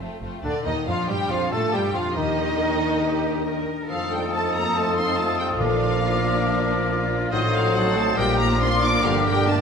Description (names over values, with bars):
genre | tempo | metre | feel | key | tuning
classical, dramatic, fast romantic movement for symphony orchestra | 140 BPM | 4/4 | straight | Bb major | A4 = 443 Hz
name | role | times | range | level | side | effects
warm symphonic violin section | melody | 0.0-9.6 s | F4 to D6 | -28 LUFS | left 2 dB | none
warm symphonic violin section | second line | 0.0-9.6 s | A3 to D5 | -32 LUFS | left 1 dB | none
warm studio viola section | accompaniment | 0.0-9.6 s | D3 to A4 | -30 LUFS | right 1 dB | none
concert harp | arpeggios | 0.0-9.6 s | G2 to Bb4 | -29 LUFS | left 6 dB | none
rich symphonic double bass section | bass | 0.0-9.6 s | F1 to A2 | -29 LUFS | right 4 dB | none
warm symphonic cello section | bass | 0.0-9.6 s | F2 to Bb4 | -31 LUFS | right 3 dB | none
clear clarinet | second line | 0.4-9.6 s | D4 to C5 | -29 LUFS | equal | none
mellow bassoon | accompaniment | 0.4-9.6 s | D3 to A3 | -30 LUFS | right 2 dB | none
dark French horn section | sustained chords | 0.4-9.6 s | D3 to D4 | -31 LUFS | left 3 dB | none
mellow hollow concert flute | second line | 0.5-9.6 s | D5 to Eb6 | -29 LUFS | left 2 dB | none
timpani | percussion | 5.6-6.2 s | Bb2 | -32 LUFS | right 2 dB | none
room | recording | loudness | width
wet scoring stage reverb, RT60 1.6 s | none | -20 LUFS | side -6 dB against mid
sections
0.4-9.6 A section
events
none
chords
0.4 Bb; 2.2 Ebmaj7; 3.9 F7; 5.6 Bb; 7.3 Adim7; 8.2 Bb; 9.0 Gm7